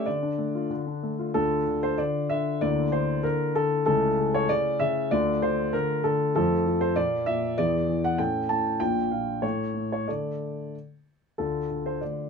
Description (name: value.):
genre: classical-period piano sonatina.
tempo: 96 BPM.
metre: 2/4.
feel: straight.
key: D minor.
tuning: A4 = 440 Hz.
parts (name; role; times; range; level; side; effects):
warm concert grand piano; solo; 0.0-12.3 s; Bb1 to A5; -24 LUFS; left 1 dB; none.
room: light reverb.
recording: close, detailed microphones.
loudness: -24 LUFS.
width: side -5 dB against mid.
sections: 0.0-1.4 A section; 1.4-11.4 B section.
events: none.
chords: 0.1 Dm; 2.6 Bbmaj9#11/D; 3.9 A/C#; 5.1 Dm; 6.4 F; 7.0 Bb; 7.6 E7; 8.2 A7; 8.8 Bb; 9.4 N.C.; 10.1 D5; 11.4 Dm.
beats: | 0.06 0.70 | 1.35 1.99 | 2.62 3.24 | 3.87 4.49 | 5.12 5.74 | 6.35 6.96 | 7.58 8.19 | 8.80 9.43 | 10.08 10.73 | 11.38 12.01.